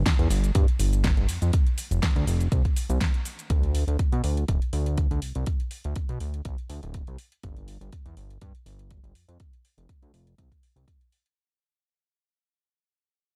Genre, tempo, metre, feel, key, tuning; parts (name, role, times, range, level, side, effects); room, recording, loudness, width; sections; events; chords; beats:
nu-disco, nu disco; 122 BPM; 4/4; swing 54% on 16ths; A4 = 439 Hz
fat analog bass; bass; 0.0-10.9 s; D1 to B2; -28 LUFS; equal
electronic kick drum; drums; 0.1-11.0 s; -27 LUFS; equal; small room ambience
pop drum kit; drums; 0.1-11.3 s; hi-hat, shaker, snare drum; -35 LUFS; equal; small room ambience
little or no reverb; dark, warm production; -25 LUFS; mono
0.0-11.4 A section
fade-out 0.0-11.4
0.06 0.55 1.04 | 1.53 2.02 2.52 3.01 | 3.50 3.99 4.48 4.97 | 5.47 5.96 6.45 6.94 | 7.43 7.93 8.42 8.91 | 9.40 9.89 10.38 10.88